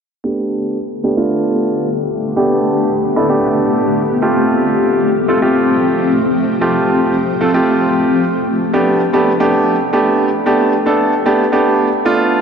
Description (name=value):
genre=pop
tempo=113 BPM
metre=4/4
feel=straight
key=G mixolydian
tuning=A4 = 439 Hz
part: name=clear baby grand piano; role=accompaniment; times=0.2-12.4 s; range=A3 to A4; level=-13 LUFS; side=right 1 dB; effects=low-pass filter
part: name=granular cloud pad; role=sustained chords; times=1.3-8.7 s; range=D3 to G4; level=-18 LUFS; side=left 2 dB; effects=built-in reverb, low-pass filter
room=wet cathedral reverb, RT60 5.2 s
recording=dreamy mix soaked in reverb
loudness=-12 LUFS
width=side -6 dB against mid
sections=0.2-8.7 A section; 8.7-12.4 B section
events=filter sweep 0.2-8.7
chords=0.2 Gadd9; 4.2 Fadd9; 8.7 Gadd9